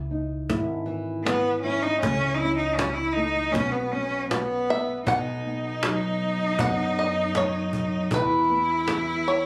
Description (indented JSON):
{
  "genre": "acoustic folk duo or small band",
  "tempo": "79 BPM",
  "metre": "4/4",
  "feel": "straight",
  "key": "unclear",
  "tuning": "A4 = 440 Hz",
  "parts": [
    { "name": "nylon-string guitar", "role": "accompaniment", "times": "0.0-9.5 s", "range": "E2 to F#4", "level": "-32 LUFS", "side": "equal", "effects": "none" },
    { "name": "upright bass", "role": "bass", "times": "0.0-9.5 s", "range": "G#1 to F#2", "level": "-36 LUFS", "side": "equal", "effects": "none" },
    { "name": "cajon", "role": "percussion", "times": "0.5-9.1 s", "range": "none", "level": "-31 LUFS", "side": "equal", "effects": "none" },
    { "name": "clear cello", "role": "second line", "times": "1.2-9.5 s", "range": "B3 to E4", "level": "-28 LUFS", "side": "equal", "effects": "none" },
    { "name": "bluegrass banjo", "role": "melody", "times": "4.7-9.5 s", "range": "B4 to F#5", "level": "-28 LUFS", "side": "equal", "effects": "plate reverb" }
  ],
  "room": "moderate studio ambience, RT60 0.5 s",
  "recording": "recorded on a phone in the room, club ambience, compression",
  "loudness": "-25 LUFS",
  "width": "mono",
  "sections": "0.0-5.1 A section; 5.1-9.5 B section",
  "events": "cello solo 0.0-5.1",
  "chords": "0.0 C#madd9; 2.0 A/C#; 3.5 Bsus2; 5.1 Badd9; 8.1 E5",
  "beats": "0.50 1.26 | 2.02 2.78 3.55 4.31 | 5.07 5.83 6.59 7.36 | 8.12 8.88"
}